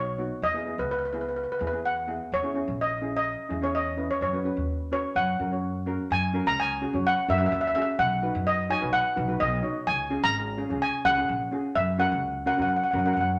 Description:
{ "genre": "calypso", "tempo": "127 BPM", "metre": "4/4", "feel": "straight", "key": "unclear", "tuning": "A4 = 440 Hz", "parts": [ { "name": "steel pan", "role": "melody", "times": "0.0-13.3 s", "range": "B4 to A#5", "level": "-28 LUFS", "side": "equal", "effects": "none" }, { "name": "steel pan", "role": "accompaniment", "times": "0.0-13.3 s", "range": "B3 to C#5", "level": "-34 LUFS", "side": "equal", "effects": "none" }, { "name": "upright bass", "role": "bass", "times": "0.0-13.4 s", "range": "G#1 to F#2", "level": "-34 LUFS", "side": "equal", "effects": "none" } ], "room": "wet studio reverb, RT60 0.8 s", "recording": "none", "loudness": "-27 LUFS", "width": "mono", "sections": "0.0-6.1 A section; 6.1-13.4 B section", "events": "none", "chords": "0.4 Eadd9; 2.3 C#madd9; 4.2 F#sus4; 5.2 F#; 8.0 B; 9.9 C#; 11.8 F#" }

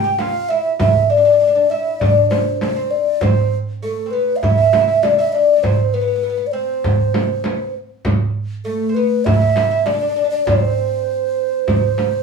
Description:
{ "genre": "Turkish makam ensemble", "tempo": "99 BPM", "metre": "4/4", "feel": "straight", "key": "C makam rast", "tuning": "A4 = 441 Hz", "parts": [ { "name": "breathy mellow alto ocarina", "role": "melody", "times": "0.0-12.2 s", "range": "A4 to G5", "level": "-16 LUFS", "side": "left 1 dB", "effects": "none" }, { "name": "oud", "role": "second line", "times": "0.0-12.2 s", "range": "A3 to G4", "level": "-23 LUFS", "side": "equal", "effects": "none" }, { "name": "darbuka", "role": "percussion", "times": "0.2-12.2 s", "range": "none", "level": "-20 LUFS", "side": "right 2 dB", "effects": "none" }, { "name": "frame drum", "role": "percussion", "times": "0.2-12.1 s", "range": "none", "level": "-23 LUFS", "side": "equal", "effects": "none" } ], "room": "moderate studio reverb, RT60 0.6 s", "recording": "band playing live in one room, studio ambience", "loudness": "-14 LUFS", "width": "side -5 dB against mid", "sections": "0.0-12.2 A section", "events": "none", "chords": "none" }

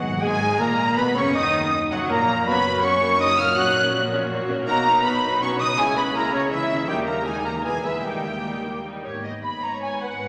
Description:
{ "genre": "classical", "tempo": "147-165 BPM", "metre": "3/4", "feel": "rubato", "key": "Eb minor, G# minor from 4.7 s", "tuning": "A4 = 440 Hz", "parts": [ { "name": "rich symphonic violin section", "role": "melody", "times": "0.0-10.3 s", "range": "B4 to Gb6", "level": "-29 LUFS", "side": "equal", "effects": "none" }, { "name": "rich symphonic violin section", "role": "second line", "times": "0.0-10.3 s", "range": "C#5 to Gb6", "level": "-32 LUFS", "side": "equal", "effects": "none" }, { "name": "silver concert flute", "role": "second line", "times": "0.0-10.3 s", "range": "C#5 to Gb6", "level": "-28 LUFS", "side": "equal", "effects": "none" }, { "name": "warm cor anglais", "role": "second line", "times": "0.0-8.8 s", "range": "C#4 to Gb5", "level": "-33 LUFS", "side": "equal", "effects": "none" }, { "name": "rich symphonic viola section", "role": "accompaniment", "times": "0.0-10.3 s", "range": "Gb3 to C#5", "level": "-31 LUFS", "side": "equal", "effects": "none" }, { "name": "dark French horn section", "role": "sustained chords", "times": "0.0-8.8 s", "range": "C#3 to Gb4", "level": "-33 LUFS", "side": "equal", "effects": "none" }, { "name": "concert harp", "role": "arpeggios", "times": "0.0-10.3 s", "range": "Gb2 to E5", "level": "-38 LUFS", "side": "equal", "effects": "none" }, { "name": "timpani", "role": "percussion", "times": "0.0-0.7, 6.9-8.6 s", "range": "G#2 to Eb3", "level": "-37 LUFS", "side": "equal", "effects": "none" }, { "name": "warm clarinet", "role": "second line", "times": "0.2-9.0 s", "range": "D#4 to Eb5", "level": "-36 LUFS", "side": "equal", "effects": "none" }, { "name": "mellow bassoon", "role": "accompaniment", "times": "0.2-9.0 s", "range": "Gb3 to Eb4", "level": "-32 LUFS", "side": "equal", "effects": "none" }, { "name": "bright trombone section", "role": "sustained chords", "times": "0.2-8.2 s", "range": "Gb2 to E4", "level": "-38 LUFS", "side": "equal", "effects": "none" }, { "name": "rich symphonic cello section", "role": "bass", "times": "0.2-10.3 s", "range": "D#2 to Eb3", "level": "-37 LUFS", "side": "equal", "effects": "none" }, { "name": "rich symphonic double bass section", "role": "bass", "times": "0.2-10.3 s", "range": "E1 to Eb2", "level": "-40 LUFS", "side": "equal", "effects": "none" } ], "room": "wet concert hall reverb, RT60 2.4 s", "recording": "none", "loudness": "-22 LUFS", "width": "mono", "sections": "0.2-9.2 A section; 9.2-10.3 B section", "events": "timpani fill 0.0", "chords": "0.2 Ebm; 2.5 Gb; 3.6 Gb/Bb; 4.7 B; 5.8 C#m; 6.9 D#; 7.6 E; 8.0 D#; 9.2 G#m" }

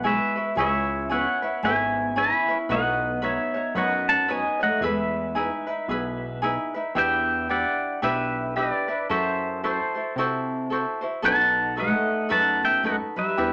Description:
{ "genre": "Hawaiian", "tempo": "112 BPM", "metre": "4/4", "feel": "swing 60% on 8ths", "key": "E major, E minor from 7.0 s", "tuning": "A4 = 438 Hz", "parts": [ { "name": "pedal steel guitar", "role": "melody", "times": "0.0-13.5 s", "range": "A4 to B5", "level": "-26 LUFS", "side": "equal", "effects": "none" }, { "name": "fingerpicked steel-string acoustic guitar", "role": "second line", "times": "0.0-6.4, 11.3-13.5 s", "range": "G3 to E4", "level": "-33 LUFS", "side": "equal", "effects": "none" }, { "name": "ukulele", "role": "accompaniment", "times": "0.0-13.5 s", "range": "C#4 to C#5", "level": "-30 LUFS", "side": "equal", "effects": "none" }, { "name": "fat analog bass", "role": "bass", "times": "0.0-13.5 s", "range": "G#1 to C3", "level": "-35 LUFS", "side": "equal", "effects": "none" } ], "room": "wet small room reverb, RT60 0.5 s", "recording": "none", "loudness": "-24 LUFS", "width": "mono", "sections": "0.0-7.0 A section; 7.0-13.5 B section", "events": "none", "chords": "0.0 Eadd9; 0.6 C#m7; 2.7 Badd9; 4.8 Emaj7; 7.0 Em7; 9.1 F#m7b5; 11.2 B7" }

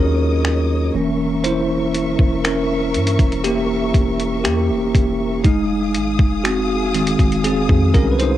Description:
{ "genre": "contemporary R&B", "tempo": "60 BPM", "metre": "4/4", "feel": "straight", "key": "unclear", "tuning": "A4 = 441 Hz", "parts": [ { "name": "bell-like tine electric piano", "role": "accompaniment", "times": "0.0-8.4 s", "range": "Eb3 to C5", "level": "-18 LUFS", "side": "equal", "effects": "fast stereo tremolo" }, { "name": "warm studio string section", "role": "sustained chords", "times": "0.0-8.4 s", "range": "Ab4 to Eb6", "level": "-27 LUFS", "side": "left 2 dB", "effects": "sidechain pumping" }, { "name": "long sustained 808-style bass", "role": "bass", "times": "0.0-8.4 s", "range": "E1 to G2", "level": "-23 LUFS", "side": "equal", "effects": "none" }, { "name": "dusty soul sampler-style drum kit", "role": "drums", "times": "0.4-8.4 s", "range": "finger snaps, hi-hat, kick drum", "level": "-17 LUFS", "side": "equal", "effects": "cassette tape" } ], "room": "light reverb", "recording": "home recording on cassette", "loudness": "-15 LUFS", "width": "side -12 dB against mid", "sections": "0.0-8.4 A section", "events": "tine electric piano solo 0.0-8.4", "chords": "0.0 Ebm7; 0.9 C7b9/E; 5.4 Fm7" }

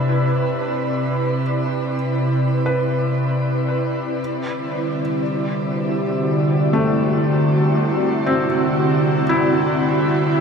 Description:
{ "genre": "ambient", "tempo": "59 BPM", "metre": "4/4", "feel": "straight", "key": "unclear", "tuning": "A4 = 442 Hz", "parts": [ { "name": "ethereal airy pad", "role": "sustained chords", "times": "0.0-10.4 s", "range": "C3 to D5", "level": "-18 LUFS", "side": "equal", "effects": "ensemble chorus, built-in reverb" }, { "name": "felt-muted upright piano", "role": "arpeggios", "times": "0.0-10.4 s", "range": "A3 to B4", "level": "-24 LUFS", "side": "equal", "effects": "tape echo" }, { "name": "overtone-sweeping drone", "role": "drone", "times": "4.8-10.4 s", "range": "C3 to G3", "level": "-25 LUFS", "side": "equal", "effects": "chorus, built-in reverb" } ], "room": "wet shimmer reverb, RT60 8.0 s", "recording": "none", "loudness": "-17 LUFS", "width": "side -6 dB against mid", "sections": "0.0-10.4 A section", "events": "none", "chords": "0.0 Cmaj7; 4.2 D7" }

